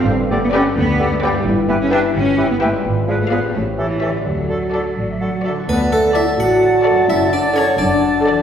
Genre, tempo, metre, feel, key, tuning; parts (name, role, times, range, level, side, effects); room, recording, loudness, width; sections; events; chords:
cinematic, playful, whimsical film cue; 86 BPM (dotted quarters); 6/8; straight; D major; A4 = 440 Hz
rich studio violin section; melody; 0.0-8.4 s; D5 to G5; -28 LUFS; left 4 dB
rich studio violin section; second line; 0.0-8.4 s; A4 to E5; -30 LUFS; left 2 dB
rich studio viola section; accompaniment; 0.0-8.4 s; F#4 to B4; -26 LUFS; equal
warm French horn section; sustained chords; 0.0-8.4 s; A3 to C#5; -20 LUFS; left 1 dB
concert harp; arpeggios; 0.0-8.4 s; E2 to B4; -25 LUFS; left 4 dB
rich studio cello section; bass; 0.0-8.3 s; D2 to D4; -22 LUFS; right 1 dB
rich studio double bass section; bass; 0.1-8.3 s; F#1 to D2; -23 LUFS; right 1 dB
clear oboe; second line; 0.3-8.4 s; A4 to A5; -26 LUFS; equal
dark clarinet; second line; 0.3-8.4 s; F#4 to D5; -26 LUFS; equal
silver concert flute; second line; 0.3-8.4 s; A4 to G5; -28 LUFS; equal
warm bassoon; accompaniment; 0.3-8.4 s; D3 to F#3; -24 LUFS; right 1 dB
harpsichord; melody; 5.7-8.4 s; A4 to F#5; -21 LUFS; right 2 dB
wet scoring stage reverb, RT60 1.7 s; heard from further back in the room; -14 LUFS; side -8 dB against mid
0.0-5.7 A section; 5.7-8.4 B section
0.1 G; 1.5 Em/G; 2.9 G#dim7; 3.6 A7; 4.3 D; 7.1 D/F#